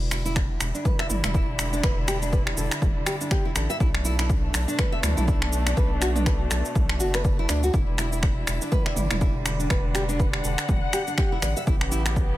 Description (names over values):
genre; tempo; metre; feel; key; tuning
afro house; 122 BPM; 4/4; swing 58% on 16ths; E minor; A4 = 439 Hz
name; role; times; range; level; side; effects
muted chamber string section; sustained chords; 0.0-12.4 s; B2 to F#5; -32 LUFS; left 1 dB; sidechain pumping
round analog bass; bass; 0.0-12.4 s; E1 to D2; -27 LUFS; equal; sidechain pumping
nylon-string guitar; arpeggios; 0.1-12.2 s; D4 to E5; -30 LUFS; equal; sidechain pumping, tape echo
deep house drum kit; drums; 0.1-12.3 s; finger snaps, shaker, toms; -29 LUFS; right 1 dB; overdrive, studio ambience
electronic kick drum; drums; 0.4-12.3 s; none; -24 LUFS; equal; overdrive, studio ambience
room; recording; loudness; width
small room ambience; none; -21 LUFS; side -15 dB against mid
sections
0.0-12.4 A section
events
none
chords
0.0 Em7; 3.8 Bm7; 7.7 Em7; 11.7 A9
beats
0.36 0.85 1.34 | 1.84 2.33 2.82 3.31 | 3.80 4.29 4.79 5.28 | 5.77 6.26 6.75 7.25 | 7.74 8.23 8.72 9.21 | 9.70 10.20 10.69 11.18 | 11.67 12.16